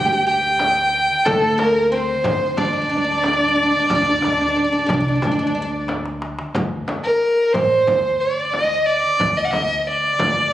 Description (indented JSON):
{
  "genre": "Arabic maqam ensemble",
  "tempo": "91 BPM",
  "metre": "4/4",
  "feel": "straight",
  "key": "D maqam hijaz",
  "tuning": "A4 = 440 Hz",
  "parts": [
    { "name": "rich violin", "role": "melody", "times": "0.0-10.5 s", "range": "A4 to G5", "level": "-17 LUFS", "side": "equal", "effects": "none" },
    { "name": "oud", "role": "second line", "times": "0.0-5.7 s", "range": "A3 to G4", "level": "-22 LUFS", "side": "equal", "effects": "none" },
    { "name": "upright bass", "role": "bass", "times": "0.0-10.5 s", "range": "A1 to D3", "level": "-28 LUFS", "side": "equal", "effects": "none" },
    { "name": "darbuka", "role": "percussion", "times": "0.6-10.4 s", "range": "none", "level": "-35 LUFS", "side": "left 1 dB", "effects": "none" },
    { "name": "frame drum", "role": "percussion", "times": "0.6-10.3 s", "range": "none", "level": "-28 LUFS", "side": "left 1 dB", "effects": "none" }
  ],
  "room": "moderate scoring stage reverb, RT60 1.8 s",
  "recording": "recorded on a phone in the room, club reverb, compression",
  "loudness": "-16 LUFS",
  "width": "side -13 dB against mid",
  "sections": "0.0-6.6 A section; 6.6-10.5 B section",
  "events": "drum fill 5.9-6.6",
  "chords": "none"
}